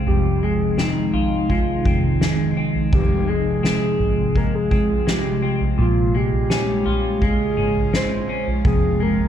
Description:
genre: dream pop.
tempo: 84 BPM.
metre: 4/4.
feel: straight.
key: F minor.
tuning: A4 = 440 Hz.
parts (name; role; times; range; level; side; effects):
ethereal airy pad; sustained chords; 0.0-9.3 s; C3 to F4; -23 LUFS; right 2 dB; ensemble chorus, built-in reverb.
clean electric guitar; arpeggios; 0.0-9.3 s; F2 to F4; -24 LUFS; left 5 dB; lush chorus, tape echo.
soft octave-layered synth lead; melody; 0.1-9.3 s; Eb4 to C5; -24 LUFS; right 1 dB; chorus, tape echo.
vintage muted fingered electric bass; bass; 0.1-9.3 s; F1 to Bb1; -25 LUFS; left 1 dB; none.
soft-mallet drum kit; drums; 0.1-9.3 s; crash cymbal, kick drum, snare drum, toms; -22 LUFS; equal; none.
room: wet studio ambience, RT60 0.5 s.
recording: dark, warm production.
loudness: -17 LUFS.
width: side -9 dB against mid.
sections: 0.0-2.9 A section; 2.9-9.3 A section.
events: none.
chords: 0.1 Fm7; 2.9 Fm; 5.8 Bbm7; 8.6 Fm.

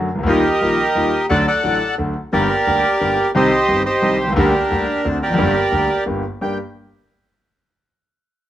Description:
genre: tango.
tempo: 176 BPM.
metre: 3/4.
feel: rubato.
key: G minor.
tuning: A4 = 439 Hz.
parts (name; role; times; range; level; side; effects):
bright concert grand piano; accompaniment; 0.0-6.6 s; G1 to G4; -19 LUFS; left 1 dB; none.
bandoneon; melody; 0.3-6.6 s; D4 to G5; -16 LUFS; right 1 dB; none.
room: light reverb.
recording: close, detailed microphones.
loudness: -15 LUFS.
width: side -12 dB against mid.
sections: 0.0-6.4 A section; 6.4-7.4 B section.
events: none.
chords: 0.3 Ebadd9; 1.3 D; 2.3 Gm; 3.3 Cm; 4.4 Gm/D; 5.0 D7; 5.4 Gm.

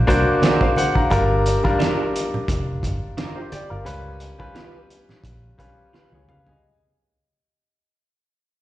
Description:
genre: lush 1970s-style soul.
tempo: 87 BPM.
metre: 4/4.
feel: swing 54% on 16ths.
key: unclear.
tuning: A4 = 440 Hz.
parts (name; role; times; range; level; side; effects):
clear grand piano; accompaniment; 0.0-6.8 s; G3 to A#5; -21 LUFS; left 1 dB; plate reverb, slapback echo.
vintage muted fingered electric bass; bass; 0.0-6.6 s; F1 to Db3; -22 LUFS; equal; none.
cloth-damped thuddy drum kit; drums; 0.1-6.6 s; hi-hat, kick drum, snare drum, toms; -23 LUFS; equal; none.
congas; percussion; 0.1-6.5 s; none; -30 LUFS; right 3 dB; slapback echo.
electric guitar through a small old amp; riff; 0.4-6.2 s; C4 to Cb5; -26 LUFS; right 5 dB; ensemble chorus, slapback echo.
room: light reverb.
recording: live gig heard through the venue's PA, recital hall reverb, nothing above 10.8 kHz.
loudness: -17 LUFS.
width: side -15 dB against mid.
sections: 0.0-6.6 A section.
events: fade-out 0.0-6.6; drum fill 5.9-6.6.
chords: 0.0 Daug7; 1.1 Gm7; 3.9 Db7#11.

